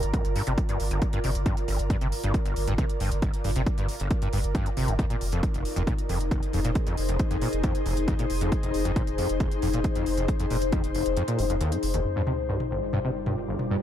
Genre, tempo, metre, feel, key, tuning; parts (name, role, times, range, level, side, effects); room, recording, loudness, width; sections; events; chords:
driving peak-time techno; 136 BPM; 4/4; straight; G phrygian; A4 = 440 Hz
saturated sub bass; bass; 0.0-12.0 s; F1 to G1; -30 LUFS; equal; overdrive, sidechain pumping, low-pass filter
techno drum kit; drums; 0.0-13.7 s; hi-hat, toms; -37 LUFS; equal; overdrive
ethereal airy pad; texture; 0.0-13.8 s; G3 to D5; -30 LUFS; left 3 dB; ensemble chorus, built-in reverb, sidechain pumping
overdriven acid bass; riff; 0.1-13.8 s; F1 to C3; -30 LUFS; equal; distortion, ensemble chorus, sidechain pumping, ping-pong delay
electronic kick drum; drums; 0.1-10.8 s; -27 LUFS; equal; overdrive
swarming drone; drone; 12.9-13.8 s; G2; -41 LUFS; equal
sub drop; sound effects; 12.0-13.8 s; -35 LUFS; equal
light reverb, digital ambience; -24 LUFS; side -10 dB against mid
0.0-12.0 A section; 12.0-13.8 B section
filter sweep on acid bass 0.0-12.0; kick drops out 11.2-12.0; impact 12.0-13.8
0.0 Gm; 5.0 Fm; 12.0 Gm